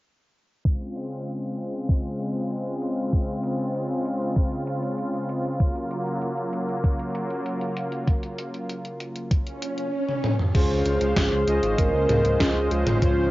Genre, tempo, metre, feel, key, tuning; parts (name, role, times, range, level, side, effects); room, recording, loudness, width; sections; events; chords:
synthwave; 97 BPM; 4/4; straight; Db major; A4 = 440 Hz
brassy analog pad; sustained chords; 0.7-13.3 s; Db3 to F5; -28 LUFS; equal; chorus, sidechain pumping, cassette tape
electronic kick drum; drums; 0.7-13.1 s; -22 LUFS; equal; overdrive
gated 80s digital drum machine; drums; 0.7-13.1 s; crash cymbal, hi-hat, snare drum, toms; -27 LUFS; equal; gated reverb, gated reverb snare, overdrive, low-pass filter on hats, low-pass filter on toms, low-pass filter on cymbals, low-pass filter on snare, low-pass filter on room
swell; sound effects; 9.5-10.5 s; -27 LUFS; equal
soft octave-layered synth lead; melody; 10.5-13.3 s; F4 to Bb4; -24 LUFS; equal; chorus, tape echo
analog synth brass; stabs; 10.5-13.3 s; Db4 to Eb5; -29 LUFS; right 2 dB; chorus, cassette tape
wide detuned saw bass; bass; 10.5-13.3 s; Ab1 to Db2; -26 LUFS; equal; chorus, tube saturation
moderate studio reverb, RT60 0.5 s; home recording on cassette, low-pass filter, nothing above 7.5 kHz; -23 LUFS; side -18 dB against mid
0.7-10.6 A section; 10.6-13.3 B section
filter sweep on drum 0.7-10.6; filter sweep 0.7-10.6; swell 9.5-10.6; drum fill 10.1-10.6
0.7 Dbmaj7; 5.6 Gbmaj7; 10.6 Dbmaj7